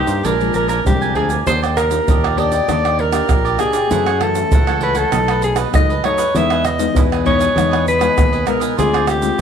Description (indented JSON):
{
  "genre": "samba and choro",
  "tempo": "98 BPM",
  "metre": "4/4",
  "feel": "straight",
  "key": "unclear",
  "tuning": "A4 = 440 Hz",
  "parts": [
    { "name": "mellow soprano saxophone", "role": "melody", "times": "0.0-9.4 s", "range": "G4 to E5", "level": "-18 LUFS", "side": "equal", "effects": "none" },
    { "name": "cavaquinho", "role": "accompaniment", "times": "0.0-9.4 s", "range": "D4 to Ab5", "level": "-23 LUFS", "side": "right 8 dB", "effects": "none" },
    { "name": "nylon-string guitar", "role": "accompaniment", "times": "0.0-9.4 s", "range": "F2 to G4", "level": "-22 LUFS", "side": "left 10 dB", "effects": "none" },
    { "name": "fingered electric bass with an envelope filter", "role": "bass", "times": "0.0-9.3 s", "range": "Bb1 to G2", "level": "-21 LUFS", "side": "equal", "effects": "none" },
    { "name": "tube shaker, pandeiro, surdo and tamborim", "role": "percussion", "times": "0.1-9.4 s", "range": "none", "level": "-19 LUFS", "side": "right 2 dB", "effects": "none" }
  ],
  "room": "moderate echo chamber reverb, RT60 1.6 s, studio reverb",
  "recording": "1960s-style stereo with parts hard left and right",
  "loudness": "-13 LUFS",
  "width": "side -7 dB against mid",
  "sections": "0.0-1.5 A section; 1.5-9.4 B section",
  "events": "none",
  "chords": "0.2 Bb7; 1.5 Ebmaj7; 3.9 Gbm7; 5.1 B7; 6.3 Emaj7; 8.8 Dm7b5",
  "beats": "0.25 0.86 | 1.47 2.08 2.69 3.30 | 3.91 4.52 5.13 5.74 | 6.35 6.96 7.57 8.17 | 8.78 9.39"
}